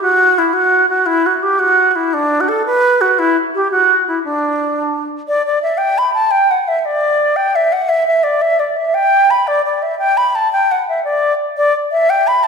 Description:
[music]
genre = celtic folk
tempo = 114 BPM (dotted quarters)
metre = 6/8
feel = straight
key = E minor from 5.3 s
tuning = A4 = 441 Hz
[part]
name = bright baroque flute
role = solo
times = 0.0-12.5 s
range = D4 to B5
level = -12 LUFS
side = equal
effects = none
[sound]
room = wet recital hall reverb, RT60 1.7 s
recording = recorded in a church or concert hall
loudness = -12 LUFS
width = side -5 dB against mid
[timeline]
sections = 0.0-5.3 A section; 5.3-12.5 B section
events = none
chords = none

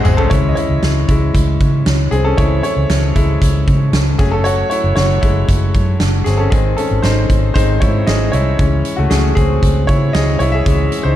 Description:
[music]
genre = piano-driven pop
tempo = 116 BPM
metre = 4/4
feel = straight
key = C# harmonic minor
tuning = A4 = 440 Hz
[part]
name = bright grand piano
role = accompaniment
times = 0.0-11.2 s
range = G#2 to G#5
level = -17 LUFS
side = left 1 dB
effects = none
[part]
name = huge arena drum kit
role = drums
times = 0.0-11.0 s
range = hi-hat, kick drum, snare drum, toms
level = -17 LUFS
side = equal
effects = none
[part]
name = vintage muted fingered electric bass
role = bass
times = 0.1-11.2 s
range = F#1 to C#3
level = -15 LUFS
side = equal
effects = none
[sound]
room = light reverb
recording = dark, warm production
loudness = -12 LUFS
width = side -12 dB against mid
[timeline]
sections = 0.3-11.2 A section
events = grand piano fill 0.0-0.3; drum fill 0.0-0.3; grand piano solo 0.3-11.2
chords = 0.3 C#m; 4.2 F#m; 6.5 G#; 8.6 C#m

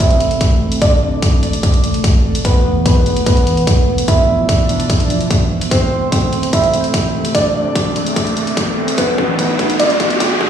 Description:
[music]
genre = heavy wobble dubstep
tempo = 147 BPM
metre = 4/4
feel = half-time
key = A minor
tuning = A4 = 440 Hz
[part]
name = felt-muted upright piano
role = melody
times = 0.0-10.5 s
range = B3 to E5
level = -18 LUFS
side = right 1 dB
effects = low-pass filter, dub echo
[part]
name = lush unison pad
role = sustained chords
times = 0.0-10.5 s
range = E2 to D4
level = -19 LUFS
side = right 1 dB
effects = chorus, vintage 12-bit sampler grit, sidechain pumping
[part]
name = electronic hi-hat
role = drums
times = 0.0-10.3 s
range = none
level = -23 LUFS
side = left 1 dB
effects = none
[part]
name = electronic kick drum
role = drums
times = 0.0-10.5 s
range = none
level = -15 LUFS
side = equal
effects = none
[part]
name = riser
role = sound effects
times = 7.2-10.5 s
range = none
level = -21 LUFS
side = equal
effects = none
[sound]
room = light reverb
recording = played on a big sound system in a bare room, large studio reverb, high-pass filter, studio reverb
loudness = -12 LUFS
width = side -9 dB against mid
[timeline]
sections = 0.0-10.5 A section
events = build-up 0.0-10.5; filter sweep on analog synth pad 0.0-10.5; filter sweep on felt piano 0.0-10.5; filter sweep 0.0-10.5; drum fill 5.7-10.5; riser 7.2-10.5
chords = 0.0 Am; 2.4 Esus4; 4.1 Bdim; 5.7 Am; 9.0 Esus4

